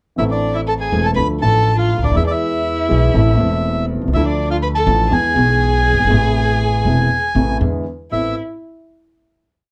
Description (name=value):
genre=tango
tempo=121 BPM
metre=4/4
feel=rubato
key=A harmonic minor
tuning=A4 = 439 Hz
part: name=bandoneon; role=melody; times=0.2-8.4 s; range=D5 to B5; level=-22 LUFS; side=equal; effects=none
part: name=warm violin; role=second line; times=0.2-8.3 s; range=D4 to B4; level=-26 LUFS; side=equal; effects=none
part: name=dark concert grand piano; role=accompaniment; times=0.2-8.3 s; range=E1 to A4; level=-22 LUFS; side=equal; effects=none
part: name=upright bass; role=bass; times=0.2-8.3 s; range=E1 to E2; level=-21 LUFS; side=equal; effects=none
room=light reverb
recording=dark, warm production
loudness=-16 LUFS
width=mono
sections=0.2-8.1 A section; 8.1-9.7 final chord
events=none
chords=0.2 Am; 1.2 Dm; 2.2 E; 3.2 Am; 4.1 Dm; 5.1 E; 6.1 Amadd9; 7.6 E7; 8.1 Amadd9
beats=| 0.18 0.68 1.18 1.67 | 2.17 2.66 3.15 3.65 | 4.14 4.63 5.12 5.62 | 6.12 6.61 7.11 7.61 | 8.12